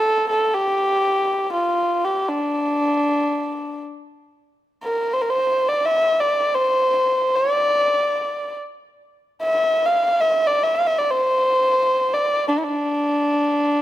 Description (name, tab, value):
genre	turkish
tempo	free time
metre	none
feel	none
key	D makam ussak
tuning	A4 = 439 Hz
part	dark kamancheh	solo	0.0-13.8 s	D4 to F5	-18 LUFS	equal	slapback echo
room	light reverb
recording	close, detailed microphones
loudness	-18 LUFS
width	side -13 dB against mid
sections	0.0-4.4 A section; 4.4-13.8 A section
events	none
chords	none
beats	free time